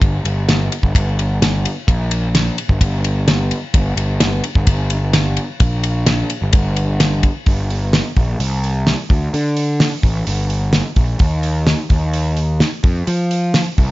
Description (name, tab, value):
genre	classic rock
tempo	129 BPM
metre	4/4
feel	straight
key	G minor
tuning	A4 = 441 Hz
part	fuzz picked electric bass	bass	0.0-13.9 s	G1 to F3	-17 LUFS	equal	overdrive
part	damped 70s drum kit	drums	0.0-13.9 s	hi-hat, kick drum, ride cymbal, snare drum	-17 LUFS	equal	none
room	little or no reverb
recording	nothing above 7.6 kHz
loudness	-14 LUFS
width	side -18 dB against mid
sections	0.0-7.5 A section; 7.5-13.9 B section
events	none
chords	none